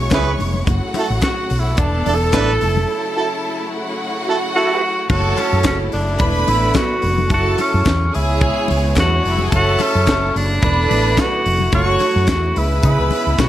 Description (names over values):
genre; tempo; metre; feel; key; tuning
disco; 108 BPM; 4/4; straight; F# minor; A4 = 440 Hz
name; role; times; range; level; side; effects
breathy tenor saxophone; melody; 0.0-13.5 s; C#4 to A4; -20 LUFS; equal; slapback echo
clear studio violin section; second line; 0.0-13.5 s; A3 to C#6; -24 LUFS; equal; none
clear studio string section; sustained chords; 0.0-13.5 s; C#3 to E4; -26 LUFS; equal; none
hollow-body short-scale fingered electric bass; bass; 0.0-13.5 s; E1 to C#3; -19 LUFS; equal; none
warm horn section; stabs; 0.1-13.5 s; D4 to E5; -23 LUFS; right 4 dB; none
tight funk drum kit; drums; 0.1-13.5 s; crash cymbal, handclaps, hi-hat, kick drum, snare drum; -21 LUFS; equal; none
congas; percussion; 0.1-13.5 s; none; -27 LUFS; left 7 dB; none
group handclap; percussion; 0.1-13.5 s; none; -34 LUFS; left 4 dB; none
room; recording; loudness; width
light reverb; lossy compression artefacts; -14 LUFS; side -12 dB against mid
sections
0.0-5.1 A section; 5.1-13.5 B section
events
tenor saxophone solo 0.0-5.1; break 2.9-5.1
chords
0.0 C#m7; 0.7 F#m7; 1.8 E7sus4; 2.9 F#m7; 6.2 E7sus4; 7.3 F#m7; 8.1 C#m7; 9.5 F#m7; 10.6 E7sus4; 11.7 F#m7; 12.6 C#m7